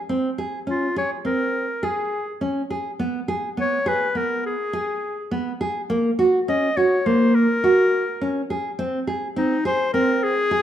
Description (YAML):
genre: contemporary instrumental, chamber music in an uneven meter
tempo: 104 BPM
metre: 5/4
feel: straight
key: unclear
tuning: A4 = 440 Hz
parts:
  - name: nylon-string guitar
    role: arpeggios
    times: 0.1-10.6 s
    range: Bb3 to Ab4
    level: -22 LUFS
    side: right 1 dB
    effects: none
  - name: clear clarinet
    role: melody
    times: 0.7-10.6 s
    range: Eb4 to Eb5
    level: -22 LUFS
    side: left 2 dB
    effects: none
room: moderate recital hall reverb, RT60 1.3 s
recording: dark, warm production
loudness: -20 LUFS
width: side -10 dB against mid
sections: 0.0-10.6 A section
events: none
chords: 0.0 Db5; 3.0 Abm; 5.9 Bbm; 8.8 Ab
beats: | 0.09 0.67 1.25 1.83 2.42 | 3.00 3.58 4.16 4.73 5.31 | 5.89 6.47 7.05 7.63 8.21 | 8.79 9.36 9.94 10.52